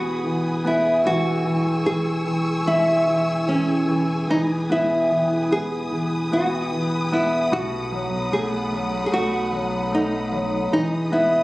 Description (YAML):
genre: pop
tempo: 75 BPM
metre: 4/4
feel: straight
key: E major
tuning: A4 = 440 Hz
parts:
  - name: nylon-string guitar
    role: melody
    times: 0.0-11.4 s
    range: C#4 to G#4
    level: -22 LUFS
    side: equal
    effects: none
  - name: clear concert grand piano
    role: accompaniment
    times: 0.0-11.4 s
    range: B2 to B3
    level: -24 LUFS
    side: left 1 dB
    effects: none
  - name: warm studio string section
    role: sustained chords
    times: 0.0-11.4 s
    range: A3 to E6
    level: -29 LUFS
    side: equal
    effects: none
  - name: warm sub bass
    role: bass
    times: 0.0-11.4 s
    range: E1 to B1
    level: -32 LUFS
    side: equal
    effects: none
room: light reverb, small room ambience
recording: recorded on a phone in the room, club reverb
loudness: -19 LUFS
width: side -19 dB against mid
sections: 0.0-11.4 A section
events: none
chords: 0.0 Emaj7; 1.1 C#m/E; 4.3 Emaj7; 7.5 B7; 10.7 Emaj7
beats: 0.25 | 1.05 1.85 2.66 3.48 | 4.29 5.11 5.91 6.72 | 7.52 8.32 9.12 9.92 | 10.72